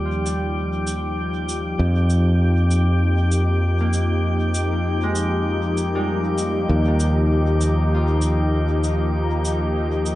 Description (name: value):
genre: ambient dub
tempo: 98 BPM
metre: 4/4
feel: swing 56% on 16ths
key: F minor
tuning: A4 = 440 Hz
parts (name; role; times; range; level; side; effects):
- warm analog pad; sustained chords; 0.0-10.2 s; F3 to G4; -24 LUFS; left 1 dB; lush chorus
- Celtic harp; arpeggios; 0.0-10.2 s; G3 to F4; -30 LUFS; right 1 dB; low-pass filter, tape echo
- modern bright fingered electric bass; bass; 0.0-10.2 s; Eb2 to F2; -20 LUFS; equal; none
- drifting glass-harmonics texture; texture; 0.0-10.2 s; G4 to G5; -30 LUFS; left 2 dB; chorus, built-in reverb
- cabasa; drums; 0.3-10.2 s; none; -33 LUFS; right 2 dB; none
room: light reverb, small room reverb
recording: nothing above 10.3 kHz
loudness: -18 LUFS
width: side -16 dB against mid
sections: 0.0-10.2 A section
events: filter sweep on harp 0.0-10.2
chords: 0.0 Ebadd9; 1.8 Fm9; 6.7 Ebadd9